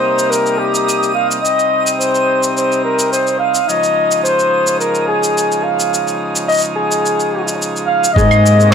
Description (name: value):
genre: folktronica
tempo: 107 BPM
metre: 4/4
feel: straight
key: unclear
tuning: A4 = 443 Hz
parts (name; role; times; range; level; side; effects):
- warm flugelhorn; melody; 0.0-8.7 s; G4 to F5; -14 LUFS; left 1 dB; ping-pong delay
- accordion; sustained chords; 0.0-8.7 s; C3 to Eb4; -20 LUFS; equal; none
- twinkling granular texture; texture; 0.0-8.2 s; Eb6; -26 LUFS; right 4 dB; built-in reverb
- shaker and claves; drums; 0.2-8.7 s; none; -21 LUFS; right 1 dB; small room ambience
- kora; arpeggios; 8.2-8.7 s; Ab3 to C4; -21 LUFS; left 1 dB; ping-pong delay
- muted cello; bass; 8.2-8.7 s; Ab2; -11 LUFS; right 1 dB; tube saturation
- electronic kick drum; drums; 8.2-8.3 s; none; -14 LUFS; right 1 dB; small room ambience
room: moderate studio reverb, RT60 0.6 s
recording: none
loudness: -12 LUFS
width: side -7 dB against mid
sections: 0.0-8.2 A section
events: none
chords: 0.0 Eb6; 3.7 Dbadd9; 8.2 Abadd9